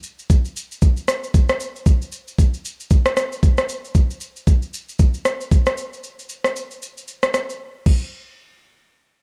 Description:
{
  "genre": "amapiano",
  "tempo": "115 BPM",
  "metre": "4/4",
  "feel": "swing 58% on 16ths",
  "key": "none",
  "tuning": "none",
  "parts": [
    { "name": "smooth R&B drum kit", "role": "drums", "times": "0.0-8.0 s", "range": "crash cymbal, kick drum, rim click, shaker", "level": "-19 LUFS", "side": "equal", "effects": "none" }
  ],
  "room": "little or no reverb",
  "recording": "dark, warm production",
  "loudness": "-20 LUFS",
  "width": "mono",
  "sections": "0.0-8.1 A section; 8.1-9.2 B section",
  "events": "silent gap 7.6-8.1",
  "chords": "none"
}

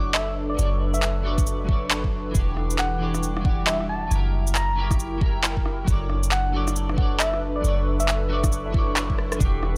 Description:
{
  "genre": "future garage",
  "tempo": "136 BPM",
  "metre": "4/4",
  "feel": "swing 61% on 16ths",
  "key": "B minor",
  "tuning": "A4 = 442 Hz",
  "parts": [
    { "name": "clean electric guitar", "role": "accompaniment", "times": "0.0-9.8 s", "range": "E3 to D5", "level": "-34 LUFS", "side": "equal", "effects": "analog chorus, sidechain pumping, tape echo" },
    { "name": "airy breathy pad", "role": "sustained chords", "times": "0.0-9.8 s", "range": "E3 to G5", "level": "-34 LUFS", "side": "equal", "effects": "chorus, vintage 12-bit sampler grit, sidechain pumping" },
    { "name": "soft 808-style bass", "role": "bass", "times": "0.0-9.8 s", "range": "E1 to F#1", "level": "-28 LUFS", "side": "equal", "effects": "sidechain pumping" },
    { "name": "soft struck synth lead", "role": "melody", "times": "0.1-8.4 s", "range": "D5 to A#5", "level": "-32 LUFS", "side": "equal", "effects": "chorus, tape echo" },
    { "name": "electronic handclaps, shaker and rim click", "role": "drums", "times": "0.1-9.7 s", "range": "none", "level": "-28 LUFS", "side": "equal", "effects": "none" },
    { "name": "electronic kick drum", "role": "drums", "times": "1.4-9.5 s", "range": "none", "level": "-26 LUFS", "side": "equal", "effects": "none" },
    { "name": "swell", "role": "sound effects", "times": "8.7-9.4 s", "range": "none", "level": "-44 LUFS", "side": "equal", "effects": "none" }
  ],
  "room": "light reverb, digital ambience",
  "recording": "none",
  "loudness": "-23 LUFS",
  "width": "mono",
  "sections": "0.0-9.4 A section",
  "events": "swell 8.7-9.4; drum fill 9.2",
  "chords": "0.0 Bm9/F#; 2.3 Em9; 4.1 F#7b9; 5.9 Bm9/F#"
}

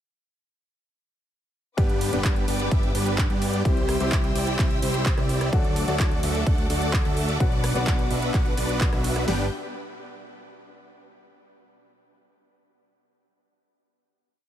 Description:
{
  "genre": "EDM, festival progressive house",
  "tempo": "128 BPM",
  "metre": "4/4",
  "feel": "straight",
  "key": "G major",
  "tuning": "A4 = 440 Hz",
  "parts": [
    { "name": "warm grand piano", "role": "accompaniment", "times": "1.8-9.5 s", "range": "G2 to G4", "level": "-31 LUFS", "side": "left 4 dB", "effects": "sidechain pumping, tape echo" },
    { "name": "clear symphonic string section", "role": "sustained chords", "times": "1.8-9.5 s", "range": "D4 to E6", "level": "-35 LUFS", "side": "left 2 dB", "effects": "sidechain pumping" },
    { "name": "supersaw chords", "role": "riff", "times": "1.8-9.5 s", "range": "G3 to F#5", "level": "-28 LUFS", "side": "right 2 dB", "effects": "sidechain pumping, tape echo" },
    { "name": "fat analog bass", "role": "bass", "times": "1.8-9.5 s", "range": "G1 to G2", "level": "-28 LUFS", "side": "equal", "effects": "sidechain pumping" },
    { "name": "big-room dance drum kit", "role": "drums", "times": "1.8-9.4 s", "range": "hi-hat, kick drum, snare drum", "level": "-24 LUFS", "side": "equal", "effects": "none" },
    { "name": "big-room dance drum kit", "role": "drums", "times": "1.8-9.3 s", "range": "handclaps, hi-hat, rim click", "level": "-32 LUFS", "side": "right 1 dB", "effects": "overdrive" }
  ],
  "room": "little or no reverb",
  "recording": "none",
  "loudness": "-21 LUFS",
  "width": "side -11 dB against mid",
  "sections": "1.8-9.3 drop; 9.3-11.2 final chord",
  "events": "drop 1.8-9.3",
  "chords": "1.8 G; 3.7 C; 5.5 D; 7.4 Bm; 9.3 G"
}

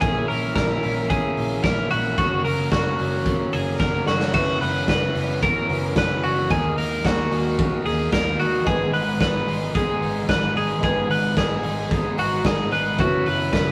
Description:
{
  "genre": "jangly indie pop",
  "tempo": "111 BPM",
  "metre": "4/4",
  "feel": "straight",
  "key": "G# minor",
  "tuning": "A4 = 439 Hz",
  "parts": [
    { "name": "crunchy overdriven guitar", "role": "accompaniment", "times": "0.0-13.7 s", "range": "F#2 to G#4", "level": "-30 LUFS", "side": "equal", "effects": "none" },
    { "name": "twelve-string electric guitar", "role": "arpeggios", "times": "0.0-13.7 s", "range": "F#4 to B4", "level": "-26 LUFS", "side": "equal", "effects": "none" },
    { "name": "vintage muted picked electric bass", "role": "bass", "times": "0.0-13.7 s", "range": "F#1 to D#2", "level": "-31 LUFS", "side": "equal", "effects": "none" },
    { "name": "raw garage drum kit", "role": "drums", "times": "0.0-13.7 s", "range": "crash cymbal, hi-hat, kick drum, snare drum", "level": "-27 LUFS", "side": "equal", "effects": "none" },
    { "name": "dark upright piano", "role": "accompaniment", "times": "4.3-13.7 s", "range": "D#4 to B4", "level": "-35 LUFS", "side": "equal", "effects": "none" }
  ],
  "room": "moderate stone room reverb, RT60 1.1 s",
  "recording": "rough rehearsal-room recording",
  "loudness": "-22 LUFS",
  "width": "mono",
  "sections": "0.0-4.3 A section; 4.3-13.7 B section",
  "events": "drum fill 3.8-4.3",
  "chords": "0.0 A#dim; 2.2 F#; 4.3 F#7sus4; 6.5 D#sus4; 8.7 G#m; 13.0 F#7sus4"
}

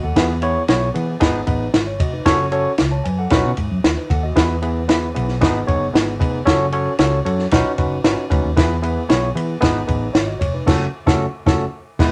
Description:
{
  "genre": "uptempo 1960s-style soul",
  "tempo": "114 BPM",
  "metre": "4/4",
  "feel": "straight",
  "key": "E major",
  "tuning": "A4 = 440 Hz",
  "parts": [
    { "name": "tine electric piano", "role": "accompaniment", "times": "0.0-12.1 s", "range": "G#3 to A5", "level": "-23 LUFS", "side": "equal", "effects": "none" },
    { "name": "vintage muted fingered electric bass", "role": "bass", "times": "0.0-12.1 s", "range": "E1 to E3", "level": "-25 LUFS", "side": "equal", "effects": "none" },
    { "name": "compact cocktail drum kit", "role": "drums", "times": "0.2-12.1 s", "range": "crash cymbal, kick drum, ride cymbal, snare drum", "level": "-21 LUFS", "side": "equal", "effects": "none" }
  ],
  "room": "moderate studio reverb, RT60 0.7 s",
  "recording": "none",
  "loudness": "-18 LUFS",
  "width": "mono",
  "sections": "0.0-12.1 A section",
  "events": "band accent 10.7-12.1; drum fill 11.7-12.1",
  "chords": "0.2 E; 1.2 G#m; 2.3 F#m; 3.3 Badd9; 4.4 E; 5.4 G#m; 6.5 F#m; 7.5 Badd9; 8.6 E; 9.6 G#m; 10.7 F#m"
}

